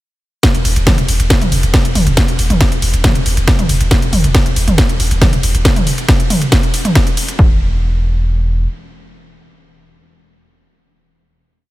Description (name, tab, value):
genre	driving peak-time techno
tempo	138 BPM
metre	4/4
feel	straight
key	unclear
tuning	A4 = 440 Hz
part	electronic kick drum	drums	0.4-7.5 s	none	-13 LUFS	equal	none
part	techno drum kit	drums	0.4-7.4 s	hi-hat, ride cymbal, snare drum, toms	-15 LUFS	equal	none
part	saturated sub bass	bass	0.5-8.7 s	E1	-16 LUFS	equal	tube saturation, sidechain pumping, low-pass filter
room	little or no reverb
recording	none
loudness	-11 LUFS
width	side -17 dB against mid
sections	0.4-7.4 drop; 7.4-10.9 final note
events	drop 0.4-7.4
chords	none